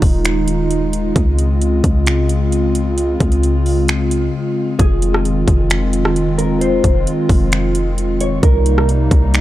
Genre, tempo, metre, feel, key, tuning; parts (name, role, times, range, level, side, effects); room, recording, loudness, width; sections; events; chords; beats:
hip hop, atmospheric cloud-rap; 132 BPM; 4/4; half-time; A4 = 441 Hz
hollow soft pad; sustained chords; 0.0-9.4 s; C3 to F4; -18 LUFS; equal; chorus, sidechain pumping
warm 808-style bass; bass; 0.0-9.4 s; Eb1 to Db2; -17 LUFS; equal
trap drum kit; drums; 0.0-9.4 s; finger snaps, hi-hat, kick drum, rim click; -17 LUFS; equal
mellow electric guitar; melody; 4.8-8.9 s; Ab4 to Db5; -23 LUFS; left 1 dB; lush chorus, tape echo
little or no reverb; dry, gritty hardware recording; -13 LUFS; side -14 dB against mid
0.0-4.8 A section; 4.8-9.4 B section
break 4.3-4.8
0.0 Ebsus4; 1.2 Dbmaj7; 4.8 Fm7; 8.4 Cm7
0.25 0.70 | 1.16 1.61 2.07 2.52 | 2.98 3.43 3.88 4.34 | 4.79 5.25 5.70 6.16 | 6.61 7.07 7.52 7.98 | 8.43 8.88 9.34